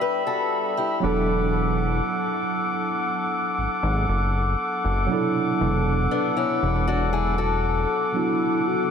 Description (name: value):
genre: R&B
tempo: 59 BPM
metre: 4/4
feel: straight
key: unclear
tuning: A4 = 438 Hz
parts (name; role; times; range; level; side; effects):
- tine electric piano; accompaniment; 0.0-8.9 s; F#3 to A4; -27 LUFS; right 4 dB; lush chorus
- mellow accordion; sustained chords; 0.0-8.9 s; G3 to D6; -25 LUFS; left 1 dB; none
- fingerpicked acoustic archtop guitar; arpeggios; 0.0-8.9 s; B3 to B4; -28 LUFS; left 8 dB; ping-pong delay
- fat analog bass; bass; 1.0-7.9 s; E1 to G#1; -24 LUFS; equal; none
- hollow clarinet-like synth lead; melody; 8.2-8.9 s; E4 to F#4; -25 LUFS; left 2 dB; chorus, ping-pong delay
room: wet huge ambient reverb, RT60 7.5 s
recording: dreamy mix soaked in reverb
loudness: -21 LUFS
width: side -7 dB against mid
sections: 0.0-8.9 A section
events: none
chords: 0.0 G6; 1.0 E9sus4